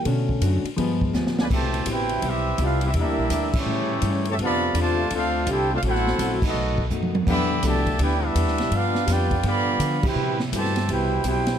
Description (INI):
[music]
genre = jazz, big band swing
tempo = 166 BPM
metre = 4/4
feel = swing 64% on 8ths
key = C major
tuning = A4 = 440 Hz
[part]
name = warm grand piano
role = accompaniment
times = 0.0-1.5 s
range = D3 to C#4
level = -25 LUFS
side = left 1 dB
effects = none
[part]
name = vintage hollow-body jazz guitar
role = accompaniment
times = 0.1-11.5 s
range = G2 to A4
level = -32 LUFS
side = left 5 dB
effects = none
[part]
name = upright bass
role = bass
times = 0.1-11.6 s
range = A1 to D3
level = -25 LUFS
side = equal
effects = none
[part]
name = swinging big-band drum kit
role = drums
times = 0.1-11.5 s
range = crash cymbal, hi-hat, kick drum, ride cymbal, snare drum, toms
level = -28 LUFS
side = equal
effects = none
[part]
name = warm trumpet section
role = melody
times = 1.4-11.6 s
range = A3 to B5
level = -26 LUFS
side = right 2 dB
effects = none
[part]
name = mellow trombone section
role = second line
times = 1.4-11.6 s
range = B2 to G4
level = -28 LUFS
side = right 1 dB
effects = none
[part]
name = bright saxophone section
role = sustained chords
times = 1.5-11.6 s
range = C3 to F#4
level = -37 LUFS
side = equal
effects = none
[sound]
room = little or no reverb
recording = close, detailed microphones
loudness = -20 LUFS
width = side -9 dB against mid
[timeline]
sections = 0.0-1.5 A section; 1.5-11.6 B section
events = grand piano solo 0.0-1.5; drum fill 1.1-1.5, 6.9-7.3; band accent 3.5, 6.4, 10.0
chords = 0.1 Bm7; 0.8 G7b9; 1.5 Cmaj7; 2.9 Em7b5; 3.7 A7; 4.4 Dm7; 5.8 F#m7b5; 6.6 B7; 7.3 Em7; 8.7 G7; 10.2 Cmaj7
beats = | 0.07 0.43 0.79 1.15 | 1.51 1.87 2.23 2.59 | 2.95 3.31 3.67 4.03 | 4.39 4.75 5.11 5.47 | 5.83 6.19 6.55 6.91 | 7.27 7.63 8.00 8.36 | 8.72 9.08 9.44 9.80 | 10.16 10.52 10.88 11.24